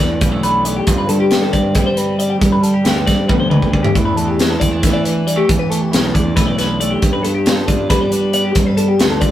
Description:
math rock and midwest emo; 273 BPM (eighths); 7/8; straight; A4 = 440 Hz
clean electric guitar; accompaniment; 0.0-9.3 s; E2 to G4; -21 LUFS; right 2 dB
twelve-string electric guitar; arpeggios; 0.0-9.3 s; G4 to D5; -20 LUFS; left 3 dB; phaser
fuzz fingered electric bass; bass; 0.0-9.3 s; B1 to G3; -19 LUFS; right 1 dB; overdrive
crisp fusion drum kit; drums; 0.0-9.3 s; hi-hat, kick drum, snare drum, toms; -16 LUFS; equal
light reverb; rough rehearsal-room recording; -13 LUFS; side -12 dB against mid
0.0-9.3 A section
drum fill 3.3-4.0
0.0 E7sus4; 0.9 G7sus4; 4.0 E7sus4; 7.0 G7
0.21 0.43 0.65 | 0.87 1.09 1.31 1.53 1.75 1.97 2.19 | 2.41 2.63 2.85 3.07 3.29 3.51 3.73 | 3.95 4.17 4.39 4.61 4.83 5.05 5.27 | 5.49 5.71 5.93 6.15 6.37 6.58 6.80 | 7.02 7.24 7.46 7.68 7.90 8.12 8.34 | 8.56 8.78 9.00 9.22

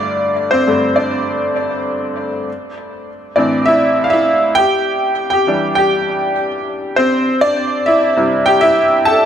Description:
pop; 100 BPM; 4/4; straight; A4 = 438 Hz
bright upright piano; solo; 0.0-9.3 s; G2 to A5; -13 LUFS; equal; tape echo
moderate spring reverb, RT60 2.0 s; echo-heavy mix; -12 LUFS; side -9 dB against mid
0.0-7.3 A section; 7.3-9.3 B section
upright piano solo 0.0-7.3, 7.3-9.3
0.0 Gsus2; 2.5 Am; 4.6 Em7; 7.3 C
| 0.08 0.68 1.28 1.88 | 2.48 3.08 3.68 4.28 | 4.88 5.48 6.08 6.68 | 7.28 7.88 8.48 9.08

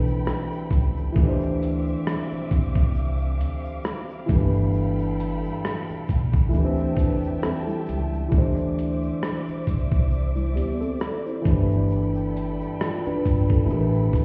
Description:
lo-fi hip hop; 67 BPM; 4/4; swing 56% on 16ths; D dorian; A4 = 440 Hz
felt-muted upright piano; accompaniment; 0.0-14.2 s; E3 to D5; -29 LUFS; equal; low-pass filter
warm studio string section; sustained chords; 0.0-14.2 s; C4 to D6; -39 LUFS; equal; low-pass filter
upright bass; bass; 0.0-14.2 s; G1 to E2; -28 LUFS; equal
dusty soul sampler-style drum kit; drums; 0.1-14.2 s; hi-hat, kick drum, rim click, shaker; -25 LUFS; equal
tube shaker; percussion; 0.1-14.2 s; -72 LUFS; equal
mellow tine electric piano; second line; 7.0-11.7 s; G3 to C5; -32 LUFS; equal; low-pass filter, tape echo
light reverb; heard muffled through a wall, stone room reverb, vinyl crackle, EQ; -24 LUFS; mono
0.0-8.3 A section; 8.3-14.2 B section
0.0 Am9; 1.2 Dm9; 4.3 G9; 6.5 D9sus4; 8.3 Dsus2; 11.5 Gadd9; 13.7 Am9
0.26 | 1.16 2.05 2.95 3.84 | 4.74 5.63 6.53 7.42 | 8.32 9.22 10.11 11.01 | 11.90 12.80 13.69

